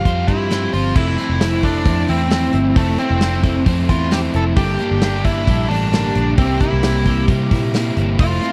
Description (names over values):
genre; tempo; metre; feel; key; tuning
jangly indie pop; 133 BPM; 4/4; straight; F major; A4 = 440 Hz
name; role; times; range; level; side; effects
nasal lead guitar with a parked wah; melody; 0.0-8.5 s; A3 to F5; -24 LUFS; equal; overdrive
crunchy overdriven guitar; accompaniment; 0.0-8.5 s; G2 to C5; -26 LUFS; equal; none
twelve-string electric guitar; arpeggios; 0.0-8.5 s; G2 to C5; -25 LUFS; equal; none
vintage muted picked electric bass; bass; 0.0-8.4 s; F1 to C3; -22 LUFS; equal; none
big rock drum kit; drums; 0.1-8.5 s; crash cymbal, hi-hat, kick drum, snare drum; -22 LUFS; equal; none
string machine, cellos; sustained chords; 1.0-8.5 s; Bb3 to E6; -34 LUFS; equal; none
vibraphone with soft mallets; second line; 8.2-8.5 s; F5; -35 LUFS; equal; none
room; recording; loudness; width
little or no reverb; dry, close 1970s-style studio recording; -17 LUFS; mono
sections
1.0-8.5 A section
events
none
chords
0.0 Csus4/F; 1.0 Fmaj7; 4.6 Gmadd9; 6.4 C7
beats
0.05 0.51 | 0.96 1.41 1.86 2.31 | 2.77 3.22 3.67 4.12 | 4.57 5.02 5.48 5.93 | 6.38 6.83 7.29 7.74 | 8.19